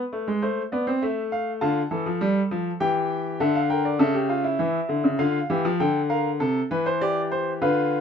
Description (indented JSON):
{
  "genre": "classical, baroque-style 3-part fugue for grand piano",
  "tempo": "100 BPM",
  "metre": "4/4",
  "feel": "straight",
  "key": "unclear",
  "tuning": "A4 = 441 Hz",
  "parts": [
    { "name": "clear baby grand piano", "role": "solo", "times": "0.0-8.0 s", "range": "C3 to A5", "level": "-22 LUFS", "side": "left 1 dB", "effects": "none" }
  ],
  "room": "light reverb",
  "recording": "minimal, uncompressed stereo recording",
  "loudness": "-22 LUFS",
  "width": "side -7 dB against mid",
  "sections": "0.0-8.0 A section",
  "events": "none",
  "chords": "0.4 Am; 1.6 Dm; 2.8 Em7b5; 4.0 A/C# (rootless); 5.2 Dm; 6.4 Am/C"
}